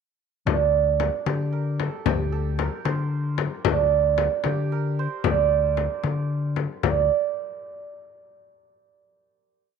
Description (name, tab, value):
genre	Persian modal ensemble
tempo	76 BPM (dotted quarters)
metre	6/8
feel	straight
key	D dastgah shur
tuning	A4 = 437 Hz
part	santur	melody	0.5-7.6 s	D4 to D5	-24 LUFS	right 12 dB	none
part	picked electric bass	bass	0.5-7.1 s	D2 to D3	-25 LUFS	left 2 dB	none
part	frame drum	percussion	0.5-7.1 s	none	-26 LUFS	left 12 dB	none
room	light reverb, small room reverb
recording	1960s-style stereo with parts hard left and right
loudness	-21 LUFS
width	side -6 dB against mid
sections	0.5-6.8 A section; 6.8-8.4 final note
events	none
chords	none